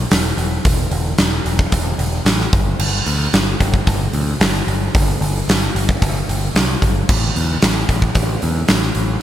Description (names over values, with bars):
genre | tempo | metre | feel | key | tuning
quiet-loud alternative rock | 112 BPM | 4/4 | straight | unclear | A4 = 436 Hz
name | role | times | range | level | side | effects
growling picked electric bass | bass | 0.0-9.2 s | E1 to E2 | -19 LUFS | equal | overdrive
huge arena drum kit | drums | 0.1-9.1 s | crash cymbal, hi-hat, kick drum, snare drum | -16 LUFS | equal | none
room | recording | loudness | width
light reverb | none | -14 LUFS | side -12 dB against mid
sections
0.0-9.2 A section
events
none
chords
none